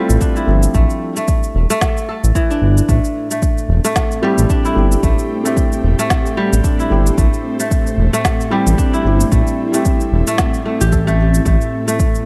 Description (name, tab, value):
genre	organic downtempo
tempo	112 BPM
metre	4/4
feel	swing 57% on 16ths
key	A minor pentatonic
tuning	A4 = 441 Hz
part	felt-muted upright piano	accompaniment	0.0-11.2 s	F3 to G4	-24 LUFS	equal	sidechain pumping, digital delay
part	kora	arpeggios	0.0-12.3 s	E3 to A4	-22 LUFS	equal	digital delay
part	smooth synth bass	bass	0.1-11.6 s	E1 to A1	-16 LUFS	equal	sidechain pumping
part	electronic cabasa and snare drum	drums	0.1-12.2 s	none	-26 LUFS	equal	overdrive
part	electronic kick drum	drums	0.2-12.1 s	none	-19 LUFS	equal	none
part	ethereal airy pad	sustained chords	3.2-12.3 s	A2 to G4	-25 LUFS	equal	ensemble chorus, built-in reverb, sidechain pumping
room	light reverb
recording	dark, warm production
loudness	-15 LUFS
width	mono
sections	0.0-12.3 A section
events	none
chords	0.0 Dm7; 2.9 Am7; 11.5 G6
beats	0.21 | 0.75 1.28 1.82 2.35 | 2.89 3.43 3.96 4.50 | 5.03 5.57 6.11 6.64 | 7.18 7.71 8.25 8.78 | 9.32 9.86 10.39 10.93 | 11.46 12.00